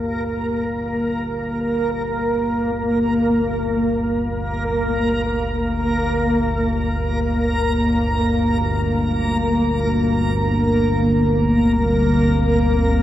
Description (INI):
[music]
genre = dark ambient drone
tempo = free time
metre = none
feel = none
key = G minor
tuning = A4 = 440 Hz
[part]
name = dark analog pad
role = sustained chords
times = 0.0-13.0 s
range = G3 to F5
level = -22 LUFS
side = left 1 dB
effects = chorus
[part]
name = analog drone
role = drone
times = 0.0-13.0 s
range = G1 to D2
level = -22 LUFS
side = equal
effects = wide subtle chorus
[part]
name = backwards swelling texture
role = texture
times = 0.0-13.0 s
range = Bb3 to Bb4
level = -21 LUFS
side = equal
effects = built-in reverb
[sound]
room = wet cathedral reverb, RT60 6.5 s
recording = worn, warbling old tape, cassette tape, warbly pitch drift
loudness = -17 LUFS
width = side -12 dB against mid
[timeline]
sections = 0.0-13.0 A section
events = fade-in on synth drone 0.0-13.0; fade-in on analog synth pad 0.0-13.0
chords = 0.0 Gm7; 11.0 Csus2/G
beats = free time